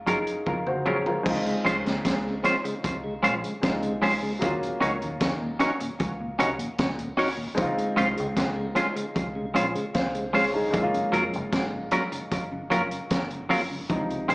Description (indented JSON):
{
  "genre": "lovers rock reggae",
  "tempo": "76 BPM",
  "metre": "4/4",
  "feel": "straight",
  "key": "Db major",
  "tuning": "A4 = 441 Hz",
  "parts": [
    { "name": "warm baby grand piano", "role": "accompaniment", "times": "0.0-14.3 s", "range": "C3 to F5", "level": "-30 LUFS", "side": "equal", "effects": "slapback echo" },
    { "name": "deep dub fingered electric bass", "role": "bass", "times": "0.0-14.3 s", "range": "F1 to Eb2", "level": "-35 LUFS", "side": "equal", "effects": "none" },
    { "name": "semi-hollow electric guitar", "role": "stabs", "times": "0.1-14.3 s", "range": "Gb3 to Db5", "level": "-26 LUFS", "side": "right 1 dB", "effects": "wide subtle chorus, tape echo, slapback echo" },
    { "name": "crunchy breakbeat drum kit", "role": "drums", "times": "0.1-14.3 s", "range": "crash cymbal, hi-hat, kick drum, snare drum, toms", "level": "-30 LUFS", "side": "equal", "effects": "tape echo" },
    { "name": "mellow tonewheel organ", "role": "accompaniment", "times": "1.5-14.3 s", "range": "Eb2 to Gb4", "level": "-33 LUFS", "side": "equal", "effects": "slow rotary speaker, tape echo, slapback echo" }
  ],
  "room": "moderate plate reverb, RT60 2.3 s",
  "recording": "live gig heard through the venue's PA, club reverb, small speaker sound",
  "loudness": "-23 LUFS",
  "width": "side -25 dB against mid",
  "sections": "0.0-1.3 A section; 1.3-13.9 B section",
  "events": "drum fill 0.5-1.3",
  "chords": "0.0 Gbmaj7; 1.3 Dbmaj7; 4.4 Ebm7; 7.6 Dbmaj7; 10.7 Gbmaj7"
}